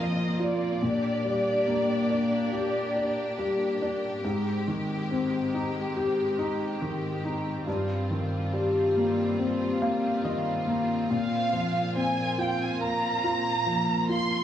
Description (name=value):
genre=pop ballad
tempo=70 BPM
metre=4/4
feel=straight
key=Eb major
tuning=A4 = 438 Hz
part: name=warm studio violin section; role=melody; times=0.0-3.8, 11.1-14.4 s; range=D5 to C6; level=-29 LUFS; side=right 1 dB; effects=cassette tape, tape echo
part: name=warm concert grand piano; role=accompaniment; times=0.0-14.4 s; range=G2 to F5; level=-27 LUFS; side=left 2 dB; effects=cassette tape
part: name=clear studio string section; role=sustained chords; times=0.0-14.4 s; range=G2 to G4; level=-32 LUFS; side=right 1 dB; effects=cassette tape
room=moderate spring reverb, RT60 2.4 s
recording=home recording on cassette, small room ambience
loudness=-25 LUFS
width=side -10 dB against mid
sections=0.0-14.4 A section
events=grand piano fill 9.4-11.1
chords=0.0 Bbsus2; 0.8 Gm/Bb; 4.2 Abmaj7; 7.7 Eb6/G; 11.1 Bbsus2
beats=| 0.81 1.67 2.53 3.39 | 4.24 5.10 5.96 6.82 | 7.67 8.53 9.39 10.24 | 11.10 11.96 12.81 13.67